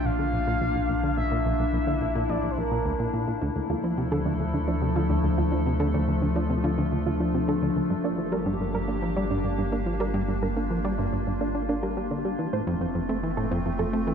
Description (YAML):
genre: ambient, sequencer-driven space music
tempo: 107 BPM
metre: 4/4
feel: straight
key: D minor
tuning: A4 = 440 Hz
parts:
  - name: expressive synth lead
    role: melody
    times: 0.0-3.1 s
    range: Bb4 to F5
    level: -31 LUFS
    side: right 2 dB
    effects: wide subtle chorus, tape echo
  - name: evolving wavetable pad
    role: sustained chords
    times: 0.0-14.1 s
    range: F3 to A4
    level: -28 LUFS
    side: left 2 dB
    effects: chorus, built-in reverb
  - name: warm sub bass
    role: bass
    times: 0.0-14.1 s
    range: F1 to D2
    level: -31 LUFS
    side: equal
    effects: none
  - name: plucky analog bass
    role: riff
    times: 0.1-14.1 s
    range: Bb1 to D4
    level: -29 LUFS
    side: equal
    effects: tape echo
  - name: soft round pluck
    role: arpeggios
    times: 3.4-14.0 s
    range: C4 to D5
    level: -33 LUFS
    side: right 4 dB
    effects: chorus, auto-pan, tape echo
room: moderate plate reverb, RT60 2.7 s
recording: dark, warm production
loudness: -24 LUFS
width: side -7 dB against mid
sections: 0.0-14.1 A section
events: filter sweep on analog synth bass 0.0-14.1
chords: 0.0 Bb; 3.4 Dmadd9; 7.9 Gm; 12.4 F